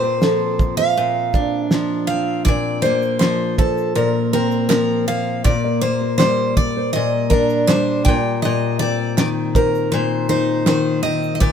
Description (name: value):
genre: acoustic pop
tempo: 80 BPM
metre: 4/4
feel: straight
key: unclear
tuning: A4 = 440 Hz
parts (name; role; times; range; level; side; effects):
- picked steel-string acoustic guitar; melody; 0.0-11.5 s; A4 to G5; -20 LUFS; equal; none
- picked steel-string acoustic guitar; accompaniment; 0.0-11.5 s; Bb2 to Eb4; -20 LUFS; left 2 dB; none
- nylon-string guitar; arpeggios; 0.0-10.5 s; A4 to D5; -26 LUFS; right 4 dB; none
- cloth-damped thuddy drum kit; drums; 0.2-11.5 s; kick drum, shaker, snare drum; -18 LUFS; right 1 dB; none
- group handclap; percussion; 3.2-10.8 s; none; -31 LUFS; right 6 dB; none
room: light reverb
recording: minimal, uncompressed stereo recording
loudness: -16 LUFS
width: side -8 dB against mid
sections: 0.0-11.5 A section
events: none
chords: 0.0 Dm7/Bb; 2.5 Bbadd9; 5.5 Bb69; 8.1 Cm/Bb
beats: 0.22 0.97 1.72 | 2.47 3.21 3.96 4.71 | 5.45 6.20 6.94 7.69 | 8.43 9.18 9.92 10.67 | 11.41